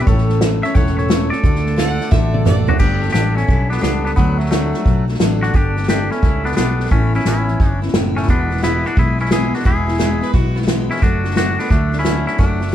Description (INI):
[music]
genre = honky-tonk and classic country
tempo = 175 BPM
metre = 4/4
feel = swing 66% on 8ths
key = D major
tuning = A4 = 441 Hz
[part]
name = twangy electric guitar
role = melody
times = 0.0-12.7 s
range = F#3 to F#5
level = -22 LUFS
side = left 1 dB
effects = none
[part]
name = picked steel-string acoustic guitar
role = accompaniment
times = 0.0-12.7 s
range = E2 to A4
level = -22 LUFS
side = left 2 dB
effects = none
[part]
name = fingered electric bass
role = bass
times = 0.1-12.7 s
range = E1 to D2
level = -19 LUFS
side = equal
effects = none
[part]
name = unplugged drum kit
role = drums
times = 0.1-12.7 s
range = crash cymbal, hi-hat, kick drum, snare drum, toms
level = -17 LUFS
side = equal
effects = none
[part]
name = bright fiddle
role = second line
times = 1.8-2.7, 10.2-10.7 s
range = B3 to F#5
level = -27 LUFS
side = right 3 dB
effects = none
[sound]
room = light reverb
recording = heard from further back in the room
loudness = -14 LUFS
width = side -11 dB against mid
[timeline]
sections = 0.0-2.8 A section; 2.8-12.7 B section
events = drum fill 2.1-2.8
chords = 0.1 A; 1.4 D; 2.8 Gadd9; 4.2 D; 5.5 Gadd9; 6.9 Aadd9; 8.3 E; 11.0 D/F#